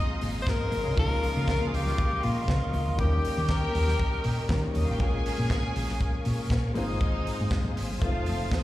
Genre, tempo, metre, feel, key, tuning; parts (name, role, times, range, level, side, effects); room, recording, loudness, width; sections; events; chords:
disco; 119 BPM; 4/4; straight; A4 = 440 Hz
clear studio string section; second line; 0.0-8.6 s; Bb3 to Ab5; -37 LUFS; right 1 dB; plate reverb, slapback echo
warm grand piano; accompaniment; 0.0-8.6 s; F3 to C5; -34 LUFS; left 3 dB; plate reverb, slapback echo
bright tonewheel organ; sustained chords; 0.0-8.6 s; Ab4 to Eb6; -39 LUFS; equal; overdrive, chorus vibrato, slow rotary speaker, plate reverb
congas; percussion; 0.1-8.6 s; -38 LUFS; left 2 dB; slapback echo
hollow-body short-scale fingered electric bass; bass; 0.2-8.6 s; F1 to Eb3; -28 LUFS; equal
tight funk drum kit; drums; 0.2-8.6 s; hi-hat, kick drum, snare drum; -30 LUFS; equal
breathy tenor saxophone; melody; 0.4-4.7 s; F4 to C5; -31 LUFS; left 3 dB; plate reverb, slapback echo
little or no reverb; live gig heard through the venue's PA, recital hall reverb; -25 LUFS; side -15 dB against mid
0.0-8.6 A section
0.0 Ab6; 1.0 Db69; 3.0 Eb7; 5.0 Bbm7; 6.8 Ab6; 8.0 F7